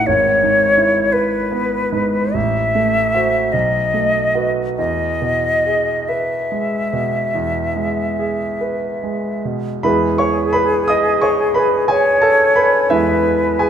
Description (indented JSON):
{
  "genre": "classical, romantic duo for flute and grand piano",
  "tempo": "45-60 BPM (dotted quarters)",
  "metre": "12/8",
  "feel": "rubato",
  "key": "E major",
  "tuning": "A4 = 440 Hz",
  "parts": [
    { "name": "concert flute", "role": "melody", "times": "0.0-13.7 s", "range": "G#4 to E5", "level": "-17 LUFS", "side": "left 2 dB", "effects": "none" },
    { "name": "clear concert grand piano", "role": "accompaniment", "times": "0.0-13.7 s", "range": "G#1 to D#6", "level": "-18 LUFS", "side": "right 3 dB", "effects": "none" }
  ],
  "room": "moderate scoring stage reverb, RT60 1.9 s",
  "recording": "none",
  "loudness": "-14 LUFS",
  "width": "side -8 dB against mid",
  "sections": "0.0-9.8 A section; 9.8-13.7 B section",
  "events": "none",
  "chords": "0.1 E/G#; 2.3 F#m7b5/A; 3.5 B7; 4.8 E"
}